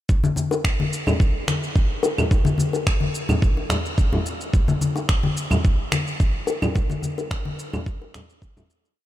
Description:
downtempo; 108 BPM; 4/4; swing 54% on 16ths
electronic kick drum; drums; 0.1-8.5 s; -20 LUFS; right 1 dB; overdrive, studio reverb
electronic shaker, finger snaps and claves; drums; 0.1-9.0 s; -29 LUFS; right 1 dB; overdrive, studio reverb
congas and bongos; percussion; 0.2-8.7 s; -23 LUFS; left 2 dB
light reverb; -20 LUFS; side -14 dB against mid
0.1-9.0 groove
fade-out 6.0-9.0
| 0.09 0.64 1.20 1.75 | 2.31 2.87 3.42 3.98 | 4.53 5.09 5.64 6.20 | 6.75 7.31 7.87 8.42

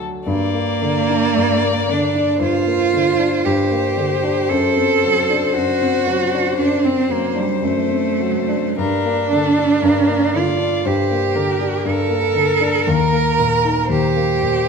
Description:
classical, slow romantic movement for piano trio; 58 BPM; 4/4; rubato; G minor; A4 = 440 Hz
dark violin; melody; 0.0-14.7 s; A4 to D5; -22 LUFS; left 10 dB
rich cello; second line; 0.0-14.7 s; G3 to Bb4; -18 LUFS; right 6 dB
dark baby grand piano; accompaniment; 0.0-14.7 s; D2 to F#4; -20 LUFS; left 2 dB
moderate scoring stage reverb, RT60 1.6 s; -15 LUFS; side -5 dB against mid
0.3-14.7 A section
0.3 Gm; 4.5 D7/F#; 8.8 Gm; 12.9 Eb
| 0.27 1.36 2.41 3.44 | 4.50 5.55 6.58 7.63 | 8.78 9.84 10.86 11.86 | 12.88 13.91

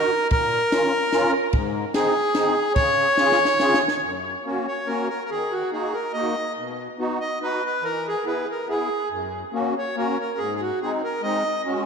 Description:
alpine folk, alpine dance band; 142 BPM; 3/4; swing 54% on 8ths; Db major, F# major from 4.0 s; A4 = 440 Hz
accordion; melody; 0.0-11.6 s; F#4 to D#5; -22 LUFS; equal; diffuse ambient delay
musette accordion; accompaniment; 0.0-11.9 s; F#2 to Bb4; -26 LUFS; left 1 dB
compact cocktail drum kit; drums; 0.3-4.0 s; kick drum, ride cymbal, snare drum; -27 LUFS; equal
wet lush hall reverb, RT60 2.0 s; dreamy mix soaked in reverb; -20 LUFS; side -6 dB against mid
0.0-4.0 A section; 4.0-11.9 B section
drum fill 3.2-4.0
0.3 Bbm; 1.5 Ab; 2.8 Db; 4.0 F#; 5.3 D#m; 6.6 B; 7.8 E; 9.1 F#; 10.4 G#
| 0.32 0.73 1.14 | 1.54 1.95 2.35 | 2.77 3.18 3.61 | 4.03 4.46 4.88 | 5.30 5.72 6.14 | 6.56 6.98 7.40 | 7.82 8.25 8.68 | 9.11 9.54 9.96 | 10.39 10.81 11.23 | 11.65

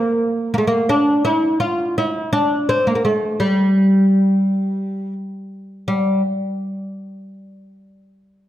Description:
Turkish makam ensemble; 168 BPM (eighths); 7/8; straight; G makam huseyni; A4 = 436 Hz
oud; solo; 0.0-6.2 s; G3 to F4; -16 LUFS; equal
moderate recital hall reverb, RT60 1.5 s; -16 LUFS; side -12 dB against mid
0.0-5.9 A section; 5.9-8.4 B section
0.16 0.52 | 0.87 1.23 1.59 1.94 2.30 2.66 3.01 | 3.37 3.73 4.08 4.44 4.80 5.16 5.51 | 5.87

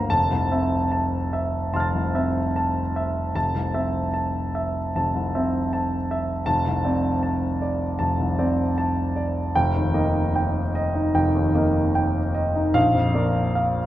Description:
classical, impressionist solo piano; 76 BPM; 4/4; uneven beats, rubato; A4 = 440 Hz
warm grand piano; solo; 0.0-13.9 s; F1 to A6; -20 LUFS; equal
wet recital hall reverb, RT60 1.6 s; -20 LUFS; side -14 dB against mid
0.1-13.9 A section
0.1 Fmaj7; 6.5 F6; 9.5 Ebadd9/F; 12.8 Bb
| 0.08 0.91 1.72 2.54 | 3.35 4.15 4.94 5.72 | 6.46 7.21 7.98 8.76 | 9.54 10.35 11.16 11.96 | 12.75 13.56

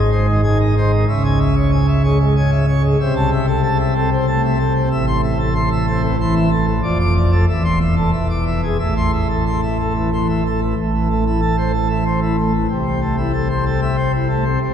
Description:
classical, organ toccata; 94 BPM; 3/4; straight; A minor; A4 = 441 Hz
pipe organ, plenum; solo; 0.0-14.7 s; E1 to D6; -15 LUFS; equal
wet cathedral reverb, RT60 5.9 s; heard from further back in the room; -15 LUFS; side -8 dB against mid
0.0-10.8 A section; 10.8-14.7 B section
0.0 G#; 1.1 C#m; 3.0 Am/C; 4.9 Am; 6.8 Dm/F; 7.5 Am/E; 8.1 E7; 8.8 Am; 12.7 Am/C
0.45 | 1.09 1.73 2.37 | 3.00 3.64 4.28 | 4.91 5.55 6.19 | 6.84 7.48 8.13 | 8.79 9.46 10.12 | 10.77 11.42 12.06 | 12.70 13.34 13.99 | 14.62

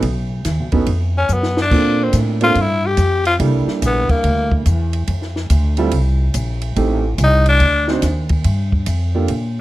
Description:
jazz, small-group swing and bop; 143 BPM; 4/4; swing 65% on 8ths; F major; A4 = 440 Hz
upright bass; bass; 0.0-9.6 s; A1 to Bb2; -17 LUFS; equal
compact cocktail drum kit; drums; 0.0-9.4 s; crash cymbal, hi-hat, kick drum, ride cymbal, snare drum; -23 LUFS; equal
warm concert grand piano; accompaniment; 0.7-9.3 s; G3 to C5; -21 LUFS; right 4 dB
growling tenor saxophone; melody; 1.2-4.5, 7.2-7.9 s; Bb3 to G4; -17 LUFS; left 2 dB
light reverb; dark, warm production; -14 LUFS; side -16 dB against mid
0.0-8.5 A section; 8.5-9.6 A section
tenor saxophone solo 0.0-9.6; drum fill 1.3-1.7
0.0 B7; 1.7 Bbmaj7; 3.4 C13; 5.1 F5; 6.8 Am7b5; 7.6 D7b9; 8.5 Gm7
| 0.04 0.46 0.88 1.30 | 1.72 2.14 2.56 2.99 | 3.41 3.83 4.25 4.67 | 5.09 5.51 5.93 6.35 | 6.77 7.19 7.61 8.03 | 8.45 8.87 9.29

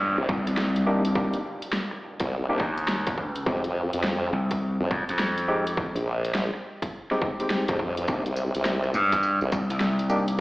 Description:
glitch hop; 104 BPM; 4/4; swing 64% on 16ths; C minor; A4 = 441 Hz
gritty slap bass; bass; 0.0-10.4 s; C2 to G2; -24 LUFS; equal; overdrive
downlifter; sound effects; 0.0-3.5 s; -38 LUFS; equal
formant-sweep wobble bass; bass; 0.2-9.5 s; Bb1 to F2; -26 LUFS; equal; chorus, tube saturation
electronic kick drum; drums; 0.3-9.7 s; -30 LUFS; equal; distortion, studio reverb
dubstep drum kit; drums; 0.5-10.4 s; hi-hat, rim click, snare drum, tambourine; -31 LUFS; equal; studio reverb
overdriven tine electric piano; stabs; 0.9-10.2 s; Ab3 to G4; -30 LUFS; equal; fast tremolo, vintage 12-bit sampler grit, sidechain pumping, dub echo
light reverb; played on a big sound system in a bare room, stone room reverb, AM radio sound; -24 LUFS; side -20 dB against mid
0.0-10.4 A section
0.0 Cm7; 3.5 Fm9; 8.1 Cm7
0.00 0.58 | 1.16 1.73 2.31 2.89 | 3.46 4.04 4.62 5.19 | 5.77 6.35 6.92 7.50 | 8.08 8.65 9.23 9.81 | 10.39

